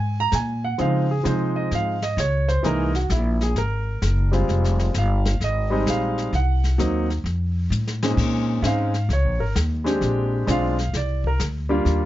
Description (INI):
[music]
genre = jazz piano trio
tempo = 130 BPM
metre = 4/4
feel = swing 66% on 8ths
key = unclear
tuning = A4 = 439 Hz
[part]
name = warm concert grand piano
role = melody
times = 0.0-12.1 s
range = Bb2 to Bb5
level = -23 LUFS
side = right 1 dB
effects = none
[part]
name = upright bass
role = bass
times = 0.0-12.1 s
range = F1 to Db3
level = -22 LUFS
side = equal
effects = none
[part]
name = jazz brush drum kit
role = drums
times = 0.3-12.1 s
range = brushed snare drum, crash cymbal, hi-hat, kick drum, snare drum, toms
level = -30 LUFS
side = left 3 dB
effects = none
[sound]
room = light reverb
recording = dark, warm production, nothing above 7.6 kHz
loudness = -20 LUFS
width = side -14 dB against mid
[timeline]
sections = 0.0-8.2 A section; 8.2-12.1 B section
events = drum fill 7.7-8.2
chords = 0.0 Absus2; 0.8 Dbmaj7; 2.6 C7b13; 4.5 Fm9; 6.3 Cm7b5; 7.3 F; 8.2 Bbm11; 10.0 Bb7